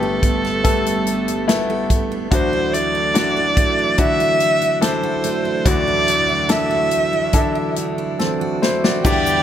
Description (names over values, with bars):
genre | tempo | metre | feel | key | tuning
pop ballad | 72 BPM | 4/4 | straight | unclear | A4 = 440 Hz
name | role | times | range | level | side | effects
dark violin | melody | 0.0-9.4 s | A4 to E5 | -19 LUFS | right 1 dB | none
bright concert grand piano | accompaniment | 0.0-9.4 s | G1 to D5 | -22 LUFS | left 4 dB | none
tonewheel organ | sustained chords | 0.0-9.4 s | E2 to D4 | -26 LUFS | equal | chorus vibrato, slow rotary speaker
picked steel-string acoustic guitar | arpeggios | 0.0-9.4 s | D3 to A4 | -25 LUFS | right 8 dB | none
natural country drum kit | drums | 0.2-9.2 s | crash cymbal, hi-hat, kick drum, snare drum | -20 LUFS | equal | none
warm symphonic violin section | second line | 9.0-9.4 s | G4 to G5 | -23 LUFS | equal | none
tube shaker | percussion | 9.1-9.4 s | none | -31 LUFS | left 8 dB | none
room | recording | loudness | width
light reverb, small room ambience | none | -15 LUFS | side -10 dB against mid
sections
0.0-9.1 A section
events
drum fill 8.2-9.1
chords
0.0 Gadd9; 2.3 Dadd9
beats
0.65 1.49 | 2.32 3.15 3.99 4.82 | 5.66 6.50 7.34 8.20 | 9.05